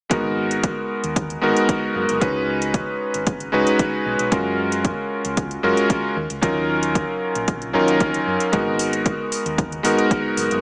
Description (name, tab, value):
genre	nu-disco, nu disco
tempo	114 BPM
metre	4/4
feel	straight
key	G# dorian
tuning	A4 = 440 Hz
part	clear electric grand piano	accompaniment	0.1-10.6 s	F#3 to B4	-22 LUFS	equal	vintage 12-bit sampler grit, sidechain pumping, digital delay
part	fingered electric bass	bass	0.1-10.6 s	F#1 to F#2	-34 LUFS	equal	none
part	electronic hi-hat	drums	0.1-10.6 s	none	-32 LUFS	equal	overdrive
part	electronic kick drum	drums	0.1-10.2 s	none	-26 LUFS	equal	overdrive
room	light reverb, digital ambience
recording	small speaker sound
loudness	-21 LUFS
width	mono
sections	0.1-10.6 A section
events	none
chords	0.1 G#m9; 2.2 C#7sus4; 4.3 F#maj9; 6.2 D#m7; 8.5 G#m9